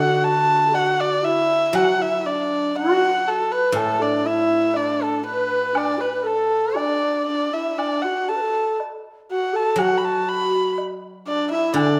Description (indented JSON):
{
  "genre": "chinese traditional, Chinese chamber ensemble",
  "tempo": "60 BPM",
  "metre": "2/4",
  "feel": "straight",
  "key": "D gong mode",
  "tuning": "A4 = 440 Hz",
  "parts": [
    { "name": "warm erhu", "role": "melody", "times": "0.0-12.0 s", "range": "A4 to B5", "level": "-23 LUFS", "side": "equal", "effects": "none" },
    { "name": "bright reedy xiao", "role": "second line", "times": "0.0-12.0 s", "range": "D4 to B4+20c", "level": "-25 LUFS", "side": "equal", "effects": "none" },
    { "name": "guzheng", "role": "accompaniment", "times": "0.0-12.0 s", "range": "A2 to A4", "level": "-30 LUFS", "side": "equal", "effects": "none" },
    { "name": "woodblock", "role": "percussion", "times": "0.7-12.0 s", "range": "none", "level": "-33 LUFS", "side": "equal", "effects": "none" }
  ],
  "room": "wet recital hall reverb, RT60 1.5 s",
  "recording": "none",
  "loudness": "-21 LUFS",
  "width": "mono",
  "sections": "0.0-12.0 A section",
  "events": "none",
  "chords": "none"
}